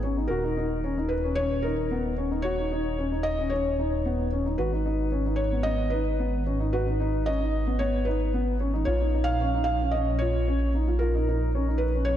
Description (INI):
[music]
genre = piano and strings electronica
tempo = 112 BPM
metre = 4/4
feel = straight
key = G# dorian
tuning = A4 = 440 Hz
[part]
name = dark upright piano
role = riff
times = 0.0-12.2 s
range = B3 to F#4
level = -29 LUFS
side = left 2 dB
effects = ping-pong delay
[part]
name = dark detuned saw bass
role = bass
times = 0.0-12.2 s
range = D#1 to A#1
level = -28 LUFS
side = right 1 dB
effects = none
[part]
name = felt-muted upright piano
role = melody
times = 0.3-12.2 s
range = A#4 to E#5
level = -30 LUFS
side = equal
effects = ping-pong delay
[sound]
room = moderate lush hall reverb, RT60 2.7 s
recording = dreamy mix soaked in reverb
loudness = -24 LUFS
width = side -11 dB against mid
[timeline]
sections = 0.0-12.2 A section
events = none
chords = 0.3 D#7(no3); 4.6 G#m; 8.9 A#m